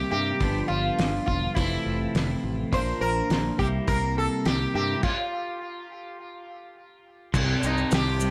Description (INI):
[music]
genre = psychedelic rock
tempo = 104 BPM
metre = 4/4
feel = straight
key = C mixolydian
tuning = A4 = 440 Hz
[part]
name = sitar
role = melody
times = 0.0-8.3 s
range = Eb4 to C5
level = -31 LUFS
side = equal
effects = tape echo
[part]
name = twelve-string electric guitar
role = riff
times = 0.0-8.3 s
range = F2 to E4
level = -32 LUFS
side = equal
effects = phaser
[part]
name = fingered electric bass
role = bass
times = 0.0-8.3 s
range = E1 to G2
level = -32 LUFS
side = equal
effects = none
[part]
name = cloth-damped thuddy drum kit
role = drums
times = 0.4-8.1 s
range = crash cymbal, hi-hat, kick drum, snare drum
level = -30 LUFS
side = equal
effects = none
[part]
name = tanpura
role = drone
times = 7.3-8.3 s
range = G2 to C3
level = -39 LUFS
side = equal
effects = none
[part]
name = maracas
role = percussion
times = 7.3-8.3 s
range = none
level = -39 LUFS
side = equal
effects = none
[sound]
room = light reverb, small room reverb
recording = none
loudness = -26 LUFS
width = mono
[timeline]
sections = 0.0-7.3 A section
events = stop 5.0-7.3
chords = 0.4 G7; 1.6 Fmaj7; 2.7 Bb; 3.6 C7; 5.0 N.C.; 7.3 C5